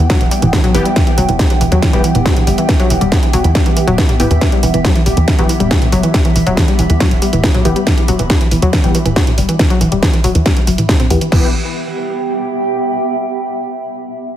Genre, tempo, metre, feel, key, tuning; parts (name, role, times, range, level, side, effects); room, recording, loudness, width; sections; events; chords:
driving peak-time techno; 139 BPM; 4/4; straight; E minor; A4 = 440 Hz
analog pluck; riff; 0.0-11.5 s; E3 to C4; -17 LUFS; equal; chorus, tube saturation, sidechain pumping, ping-pong delay
tight sequencer bass; bass; 0.0-11.5 s; D1 to E2; -16 LUFS; equal; tube saturation, sidechain pumping
granular cloud pad; texture; 0.0-13.0 s; B3 to B5; -20 LUFS; right 2 dB; built-in reverb, sidechain pumping
techno drum kit; drums; 0.1-11.4 s; crash cymbal, kick drum; -14 LUFS; equal; distortion, overdrive, studio ambience
techno drum kit; drums; 0.1-11.3 s; hi-hat, snare drum, toms; -18 LUFS; equal; overdrive, sidechain pumping on hats, studio ambience, sidechain pumping on toms, sidechain pumping on cymbals, sidechain pumping on perc
supersaw stab; stabs; 0.7-11.5 s; E3 to G4; -21 LUFS; left 2 dB; cassette tape, sidechain pumping, low-pass filter, ping-pong delay
light reverb; heavily compressed radio sound, multiband compression; -11 LUFS; side -11 dB against mid
0.0-11.3 A section; 11.3-13.0 B section
fade-out on ambient pad 0.0-11.3; filter sweep on analog synth bass 0.0-11.3; filter sweep on supersaw synth 0.0-11.3
0.0 Em